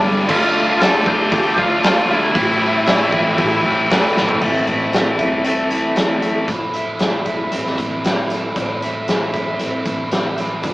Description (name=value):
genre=quiet-loud alternative rock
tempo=116 BPM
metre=4/4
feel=straight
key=A minor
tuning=A4 = 439 Hz
part: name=distorted electric guitar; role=riff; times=0.0-10.7 s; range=G2 to F4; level=-24 LUFS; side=right 1 dB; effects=distortion
part: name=overdriven electric guitar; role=riff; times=0.0-4.4 s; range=G2 to D4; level=-23 LUFS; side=equal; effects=spring reverb
part: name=tight distorted guitar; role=riff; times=0.0-6.5 s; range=G2 to F4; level=-18 LUFS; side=left 1 dB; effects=distortion
part: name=upright bass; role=bass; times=0.0-10.7 s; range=G1 to D3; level=-32 LUFS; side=equal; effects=none
part: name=octave-fuzz lead guitar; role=melody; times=0.3-3.6 s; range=E4 to A5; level=-19 LUFS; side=equal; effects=distortion, analog delay
part: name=oversized low-tuned drum kit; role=drums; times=0.3-10.7 s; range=crash cymbal, hi-hat, kick drum, snare drum, toms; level=-19 LUFS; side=equal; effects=none
part: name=mellow electric guitar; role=arpeggios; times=4.4-10.7 s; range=G2 to E4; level=-24 LUFS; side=equal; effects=tremolo
room=moderate small room ambience, RT60 0.5 s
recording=rough rehearsal-room recording, small speaker sound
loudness=-15 LUFS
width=side -18 dB against mid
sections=0.0-4.4 A section; 4.4-6.5 B section; 6.5-10.7 C section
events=drum fill 4.1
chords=0.3 Dm; 2.3 Am; 6.5 Am7